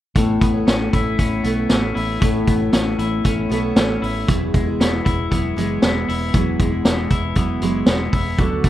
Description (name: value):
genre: jangly indie pop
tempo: 117 BPM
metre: 4/4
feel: straight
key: A major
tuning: A4 = 441 Hz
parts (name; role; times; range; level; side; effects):
- picked steel-string acoustic guitar; accompaniment; 0.2-8.7 s; D3 to C#5; -25 LUFS; right 6 dB; none
- clean electric guitar; arpeggios; 0.2-8.7 s; E2 to E4; -22 LUFS; left 4 dB; wide subtle chorus, slapback echo
- vintage muted fingered electric bass; bass; 0.2-8.7 s; E1 to D2; -26 LUFS; equal; none
- vintage drum kit; drums; 0.2-8.7 s; hi-hat, kick drum, snare drum; -19 LUFS; equal; none
room: light reverb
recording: rough home demo mix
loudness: -16 LUFS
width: side -13 dB against mid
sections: 0.2-8.7 A section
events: none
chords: 0.2 Aadd9; 4.3 Eadd9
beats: | 0.16 0.68 1.19 1.71 | 2.22 2.74 3.25 3.77 | 4.28 4.80 5.31 5.82 | 6.34 6.85 7.36 7.87 | 8.39